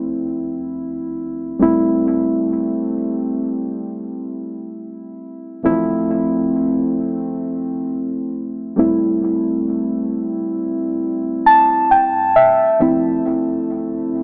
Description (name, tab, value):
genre	R&B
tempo	67 BPM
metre	4/4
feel	straight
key	D minor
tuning	A4 = 440 Hz
part	muted felt-like synth keys	solo	0.0-14.2 s	D2 to A5	-16 LUFS	equal	chorus, tape echo
room	moderate spring reverb, RT60 2.1 s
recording	echo-heavy mix, AM radio sound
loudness	-15 LUFS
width	side -36 dB against mid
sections	0.0-14.2 A section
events	synth keys fill 11.0-12.8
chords	0.0 Dm9; 1.6 Am7; 5.6 Dm9; 8.8 Am7; 12.8 Dm9